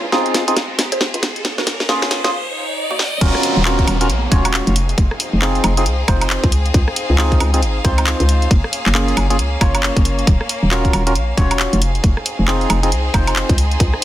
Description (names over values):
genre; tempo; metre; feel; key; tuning
UK garage, two-step garage; 136 BPM; 4/4; swing 61% on 16ths; Eb dorian; A4 = 442 Hz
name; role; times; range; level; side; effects
mallet-like synth pluck; melody; 0.0-3.1 s; Bb3 to Db5; -28 LUFS; right 2 dB; chorus, phaser, dub echo
clear chamber violin section; sustained chords; 0.0-14.0 s; Ab3 to F5; -26 LUFS; left 1 dB; sidechain pumping
hollow knocking FM bass; bass; 0.0-13.9 s; Eb1 to Db2; -17 LUFS; equal; high-pass filter
riser, swell and downlifter; sound effects; 0.0-6.7 s; none; -24 LUFS; right 1 dB; none
percussive organ stab; stabs; 0.1-13.6 s; Bb3 to Db5; -21 LUFS; equal; chorus, dub echo
garage drum kit; drums; 0.1-14.0 s; crash cymbal, handclaps, hi-hat, rim click, snare drum, woodblock; -20 LUFS; equal; soft clipping on snare
electronic kick drum; drums; 3.2-13.9 s; none; -15 LUFS; equal; none
room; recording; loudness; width
moderate studio reverb, RT60 0.6 s; dense, heavily limited modern master, high-pass filter; -14 LUFS; side -13 dB against mid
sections
0.0-3.2 A section; 3.2-14.0 B section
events
build-up 0.0-3.2; drum fill 0.0-2.3, 3.0; riser 0.0-3.2; filter sweep on synth stab 0.0-3.2; filter sweep 0.0-3.2; break 2.3-3.2; swell 2.3-3.2; drop 3.2-14.0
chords
0.0 Dbmaj7; 1.4 Gbmaj7; 3.2 Ebm7; 4.8 Fm7; 6.5 Dbmaj7; 8.5 Gbmaj7; 10.3 Ebm7; 11.8 Fm7